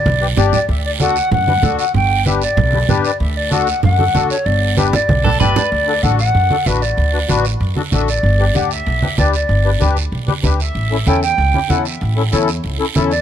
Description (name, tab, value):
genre	latin, cumbia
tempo	191 BPM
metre	4/4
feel	straight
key	D major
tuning	A4 = 440 Hz
part	silver concert flute	melody	0.0-13.2 s	C#5 to G5	-18 LUFS	equal	none
part	upright bass	bass	0.1-13.2 s	G1 to F#2	-17 LUFS	equal	none
part	congas	percussion	0.1-13.1 s	none	-19 LUFS	right 3 dB	none
part	guiro	percussion	0.1-13.2 s	none	-27 LUFS	right 9 dB	none
part	accordion	accompaniment	0.2-13.1 s	C#4 to D5	-21 LUFS	left 6 dB	light tremolo tuning
part	electric guitar at the edge of break-up	second line	5.2-5.7 s	A4 to B4	-23 LUFS	right 4 dB	none
room	light reverb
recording	none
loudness	-13 LUFS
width	side -10 dB against mid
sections	0.0-5.7 A section; 5.7-13.2 B section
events	drum fill 0.0-0.7, 4.8-5.7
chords	0.0 G; 0.7 D; 1.9 G; 3.2 D; 4.5 G; 5.7 D; 8.2 G; 10.8 A7